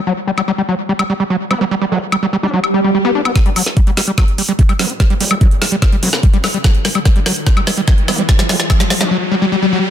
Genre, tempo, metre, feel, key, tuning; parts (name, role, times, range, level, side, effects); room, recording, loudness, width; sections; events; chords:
psychedelic trance; 146 BPM; 4/4; straight; G major; A4 = 440 Hz
screaming distorted acid line; riff; 0.1-9.8 s; F#3 to D4; -17 LUFS; moving between left 5 dB and right 6 dB; distortion, chorus, auto-pan, sidechain pumping, digital delay
garage drum kit; drums; 0.4-9.1 s; hi-hat, snare drum, woodblock; -18 LUFS; left 1 dB; overdrive, small room ambience
vowel-sweep wobble bass; second line; 1.5-9.1 s; G3 to D4; -28 LUFS; left 2 dB; chorus, sidechain pumping, high-pass filter, digital delay
swell and riser; sound effects; 2.6-9.9 s; -20 LUFS; equal
electronic kick drum; drums; 3.4-8.8 s; -12 LUFS; equal; overdrive, small room ambience
light reverb, digital ambience; dense, heavily limited modern master; -12 LUFS; side -10 dB against mid
0.0-3.4 A section; 3.4-9.9 B section
swell 2.6-3.4; build-up 3.4-9.9; drum fill 3.4-9.1; riser 3.4-9.9
0.0 G5; 3.4 Gmaj7(no3)/F#